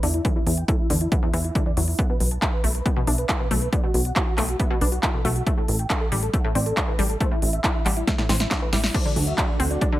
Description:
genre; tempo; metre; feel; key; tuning
uplifting trance; 138 BPM; 4/4; straight; A dorian; A4 = 440 Hz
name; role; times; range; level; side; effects
big supersaw lead; melody; 0.0-10.0 s; D4 to B5; -30 LUFS; right 1 dB; sidechain pumping, low-pass filter, dub echo
wide unison pluck; arpeggios; 0.0-10.0 s; E2 to F#4; -30 LUFS; left 2 dB; sidechain pumping, dub echo
plucky analog bass; bass; 0.0-9.8 s; A1 to E2; -24 LUFS; equal; sidechain pumping
big-room dance drum kit; drums; 0.0-9.9 s; crash cymbal, handclaps, hi-hat, snare drum; -27 LUFS; equal; overdrive
electronic kick drum; drums; 0.2-9.9 s; none; -24 LUFS; equal; overdrive
lush unison pad; sustained chords; 8.9-10.0 s; D3 to F#4; -32 LUFS; equal; chorus, sidechain pumping
room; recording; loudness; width
light reverb; none; -20 LUFS; side -15 dB against mid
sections
0.0-10.0 A section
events
filter sweep on synth arpeggio sound 0.0-10.0; drum fill 8.1-8.9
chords
0.0 N.C.; 2.0 B5; 5.5 A5; 8.9 D

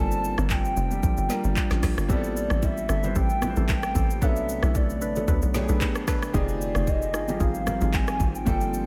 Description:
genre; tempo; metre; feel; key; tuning
amapiano; 113 BPM; 4/4; swing 55% on 16ths; unclear; A4 = 439 Hz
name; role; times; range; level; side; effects
hollow clarinet-like synth lead; melody; 0.0-8.9 s; D5 to A5; -33 LUFS; equal; chorus, delay
warm grand piano; accompaniment; 0.0-8.9 s; F#3 to C5; -34 LUFS; equal; subtle chorus
deep dark ambient pad; sustained chords; 0.0-8.9 s; C3 to A5; -38 LUFS; equal; chorus, built-in reverb, sidechain pumping
hollow log drum bass; bass; 0.0-8.9 s; F1 to D2; -29 LUFS; equal; none
afro-pop drum kit; drums; 0.1-8.9 s; handclaps, hi-hat, kick drum, rim click, shaker, snare drum; -29 LUFS; equal; none
percussive organ stab; stabs; 2.1-8.9 s; Bb3 to B4; -37 LUFS; equal; chorus, delay
congas and bongos; percussion; 2.1-8.6 s; none; -38 LUFS; equal; none
room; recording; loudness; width
light reverb; none; -25 LUFS; mono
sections
0.0-8.9 A section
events
none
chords
0.0 Gm7; 2.1 Am7; 4.2 Bm7; 6.3 Fm7

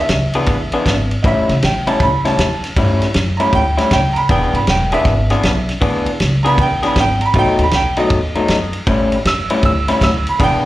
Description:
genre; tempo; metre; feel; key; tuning
electric blues shuffle; 157 BPM; 4/4; swing 65% on 8ths; unclear; A4 = 436 Hz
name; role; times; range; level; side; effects
bright upright piano; second line; 0.0-10.7 s; D#5 to E6; -19 LUFS; right 2 dB; plate reverb
upright bass; bass; 0.1-10.6 s; E1 to G2; -18 LUFS; equal; none
warm soul drum kit; drums; 0.1-10.5 s; kick drum, ride cymbal, snare drum; -19 LUFS; equal; none
electric guitar through a small old amp; riff; 0.4-10.7 s; A2 to G#4; -18 LUFS; left 2 dB; slapback echo
room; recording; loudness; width
light reverb; live gig heard through the venue's PA, club reverb; -13 LUFS; side -15 dB against mid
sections
0.0-10.7 A section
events
upright piano solo 0.0-10.7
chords
0.0 E7; 1.2 A7; 4.3 E7; 7.3 B7; 8.9 A7

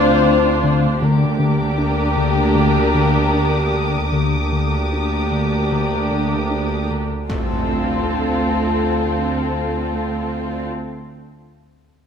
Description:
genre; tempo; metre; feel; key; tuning
cinematic, suspense film score; 78 BPM; 4/4; straight; D minor; A4 = 438 Hz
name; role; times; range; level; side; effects
muted symphonic violin section; melody; 0.0-10.7 s; A4 to C5; -24 LUFS; left 5 dB; none
muted studio violin section; second line; 0.0-10.7 s; F4 to G4; -28 LUFS; equal; none
muted symphonic viola section; accompaniment; 0.0-10.7 s; C4 to D4; -25 LUFS; right 2 dB; none
mellow French horn section; sustained chords; 0.0-10.7 s; Bb3 to G4; -26 LUFS; left 1 dB; none
chorused synth bass; riff; 0.0-7.1 s; D3 to D4; -23 LUFS; left 4 dB; none
muted symphonic cello section; bass; 0.0-10.7 s; D2; -25 LUFS; right 3 dB; none
muted symphonic double bass section; bass; 0.0-10.7 s; D2; -27 LUFS; right 4 dB; none
analog drone; drone; 0.0-10.7 s; D2; -24 LUFS; equal; chorus
muted symphonic violin section; texture; 0.0-9.9 s; A5 to E6; -30 LUFS; left 3 dB; none
concert harp; texture; 2.9-6.8 s; none; barely audible; none; none
impact; sound effects; 7.3-10.7 s; none; -28 LUFS; equal; none
room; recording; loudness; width
wet scoring stage reverb, RT60 1.9 s; none; -16 LUFS; side -7 dB against mid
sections
0.0-7.3 A section; 7.3-10.4 B section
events
impact 7.3-10.4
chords
0.0 Dm7; 1.0 Gm/D; 7.3 Dm7

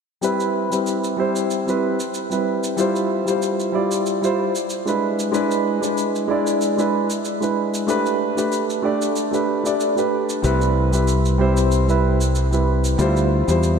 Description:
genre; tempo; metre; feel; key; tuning
sunset chillout; 94 BPM; 4/4; swing 55% on 16ths; unclear; A4 = 439 Hz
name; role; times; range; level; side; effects
dark grand piano; accompaniment; 0.2-13.8 s; G3 to D5; -19 LUFS; equal; auto-pan, low-pass filter, tape echo
shaker; drums; 0.2-13.8 s; none; -33 LUFS; right 3 dB; none
modern bright fingered electric bass; bass; 10.4-13.8 s; C2 to E2; -18 LUFS; equal; none
room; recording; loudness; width
wet cathedral reverb, RT60 4.8 s; dreamy mix soaked in reverb; -18 LUFS; side -6 dB against mid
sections
0.2-13.8 A section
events
none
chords
0.2 Cmaj7; 2.8 Dm11; 5.0 E7; 7.9 A9sus4; 10.4 Cmaj7; 13.0 Dm11

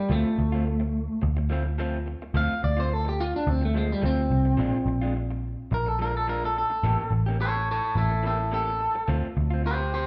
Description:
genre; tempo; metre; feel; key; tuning
blues; 107 BPM; 4/4; swing 54% on 16ths; D minor; A4 = 442 Hz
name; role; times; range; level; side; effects
electric guitar through a small old amp; melody; 0.0-10.1 s; G3 to F5; -29 LUFS; equal; slapback echo
electric guitar through a small old amp; stabs; 0.1-9.8 s; E3 to G4; -38 LUFS; equal; spring reverb, slapback echo
vintage muted picked electric bass; bass; 0.1-10.0 s; A1 to D2; -28 LUFS; equal; none
room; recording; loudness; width
digital ambience; live gig heard through the venue's PA, club reverb; -26 LUFS; mono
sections
0.0-10.1 A section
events
clean electric guitar solo 0.0-10.1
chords
0.1 Dm7; 4.6 Bb7; 6.8 A7b9; 9.1 Dm7

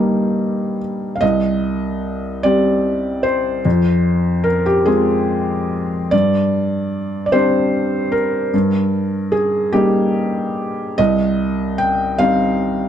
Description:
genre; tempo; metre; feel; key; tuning
neoclassical minimalist piano; 50 BPM (dotted quarters); 6/8; rubato; C minor; A4 = 440 Hz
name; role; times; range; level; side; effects
felt-muted upright piano; solo; 0.0-12.9 s; C2 to G5; -15 LUFS; equal; none
room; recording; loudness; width
moderate stone room reverb, RT60 1.3 s; dark, warm production; -15 LUFS; side -9 dB against mid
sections
0.0-1.2 A section; 1.2-12.9 B section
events
none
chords
0.0 Eb/G; 1.2 Cm; 3.6 Fm; 6.1 Gsus4; 8.5 Eb/G; 11.0 Cm

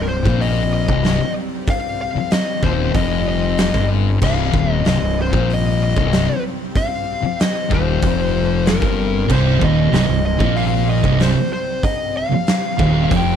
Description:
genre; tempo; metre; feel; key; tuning
stoner and doom metal; 94 BPM; 4/4; straight; C minor; A4 = 438 Hz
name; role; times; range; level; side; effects
fuzz lead guitar; melody; 0.0-13.4 s; Bb4 to G5; -23 LUFS; left 3 dB; distortion, slapback echo
bowed-like drone; sustained chords; 0.1-13.4 s; C3 to C4; -28 LUFS; equal; built-in reverb
thick fuzz guitar; riff; 0.0-13.4 s; C2 to Bb2; -20 LUFS; left 9 dB; distortion
fuzz fingered electric bass; bass; 0.0-13.4 s; C1 to Bb1; -21 LUFS; right 1 dB; overdrive
oversized low-tuned drum kit; drums; 0.3-13.3 s; crash cymbal, hi-hat, kick drum, snare drum; -21 LUFS; right 1 dB; none
thick fuzz guitar; riff; 9.3-13.4 s; C2 to Bb2; -18 LUFS; right 10 dB; distortion
room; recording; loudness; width
little or no reverb; none; -15 LUFS; side -8 dB against mid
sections
0.0-13.4 A section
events
none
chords
0.0 Cm

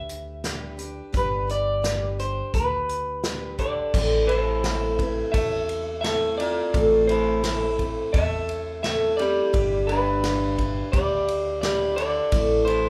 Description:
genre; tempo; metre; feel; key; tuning
honky-tonk and classic country; 86 BPM; 4/4; straight; A minor; A4 = 442 Hz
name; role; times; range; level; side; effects
electric guitar through a small old amp; melody; 0.0-12.9 s; D4 to E5; -27 LUFS; equal; none
picked steel-string acoustic guitar; accompaniment; 0.0-12.9 s; A2 to B4; -29 LUFS; equal; none
upright bass; bass; 0.0-12.9 s; G1 to E2; -33 LUFS; equal; none
unplugged drum kit; drums; 0.1-12.8 s; crash cymbal, hi-hat, kick drum, ride cymbal, snare drum; -31 LUFS; equal; none
room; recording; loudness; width
moderate large studio reverb, RT60 0.9 s; band playing live in one room; -24 LUFS; mono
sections
0.0-3.9 A section; 3.9-12.9 B section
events
none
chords
0.0 G; 3.9 Am; 9.5 G; 12.3 Am

